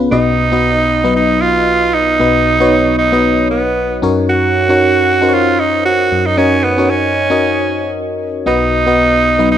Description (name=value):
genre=pop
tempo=115 BPM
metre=4/4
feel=swing 55% on 16ths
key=unclear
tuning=A4 = 440 Hz
part: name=FM electric piano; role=accompaniment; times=0.0-9.6 s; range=B1 to D#5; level=-14 LUFS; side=left 2 dB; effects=chorus
part: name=raspy tenor saxophone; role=melody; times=0.1-9.6 s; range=B3 to F#4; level=-13 LUFS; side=right 3 dB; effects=none
room=moderate lush hall reverb, RT60 2.5 s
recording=dark, warm production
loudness=-10 LUFS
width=side -10 dB against mid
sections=0.1-9.6 A section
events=none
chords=0.1 B; 4.0 F#6; 8.5 B